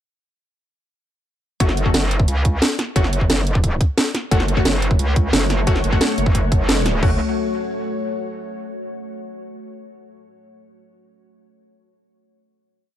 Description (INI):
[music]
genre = dark technical drum and bass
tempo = 177 BPM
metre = 4/4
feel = straight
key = F# minor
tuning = A4 = 440 Hz
[part]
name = orchestra-hit-like synth stab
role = stabs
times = 1.6-7.2 s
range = A3 to F#4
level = -27 LUFS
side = left 3 dB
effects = built-in reverb, vintage 12-bit sampler grit, dub echo
[part]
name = metallic wobble bass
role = bass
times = 1.6-7.2 s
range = F#1 to C#2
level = -20 LUFS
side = equal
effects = chorus, overdrive, sidechain pumping
[part]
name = drum and bass drum kit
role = drums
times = 1.6-7.1 s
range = crash cymbal, kick drum, toms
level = -18 LUFS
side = equal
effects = overdrive
[part]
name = drum and bass drum kit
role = drums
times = 1.6-6.9 s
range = hi-hat, snare drum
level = -20 LUFS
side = equal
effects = overdrive
[part]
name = deep dark ambient pad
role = sustained chords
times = 4.8-7.2 s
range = A3 to C#5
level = -26 LUFS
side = left 2 dB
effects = chorus, built-in reverb, sidechain pumping
[sound]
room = digital ambience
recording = dark, warm production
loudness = -16 LUFS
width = side -11 dB against mid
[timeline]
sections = 1.6-7.0 drop; 7.0-8.4 final chord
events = drop 1.6-7.0; band accent 6.7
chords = 1.6 F#m